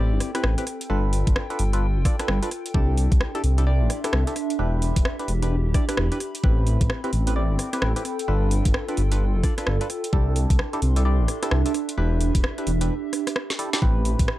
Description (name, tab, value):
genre	UK garage, two-step garage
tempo	130 BPM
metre	4/4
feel	swing 62% on 16ths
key	A minor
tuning	A4 = 440 Hz
part	percussive organ stab	stabs	0.0-14.4 s	C4 to D5	-30 LUFS	equal	chorus, phaser, analog delay
part	dark detuned saw bass	bass	0.0-14.3 s	D1 to C2	-22 LUFS	equal	tube saturation
part	warbly tape-like pad	texture	0.0-14.4 s	C4 to C6	-31 LUFS	right 2 dB	chorus, built-in reverb, phaser, sidechain pumping
part	garage drum kit	drums	0.2-14.4 s	hi-hat, rim click, snare drum	-29 LUFS	equal	overdrive
part	electronic kick drum	drums	1.3-14.3 s	none	-21 LUFS	equal	overdrive
room	little or no reverb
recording	dry, gritty hardware recording, cassette tape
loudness	-20 LUFS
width	side -15 dB against mid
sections	0.0-14.4 A section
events	break 12.9-13.8; drum fill 13.5-13.8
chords	0.0 Am9; 0.7 G9; 2.7 C69; 4.6 Em7; 6.4 Am9; 8.1 G9; 10.1 C69; 12.0 Em7; 13.8 Am9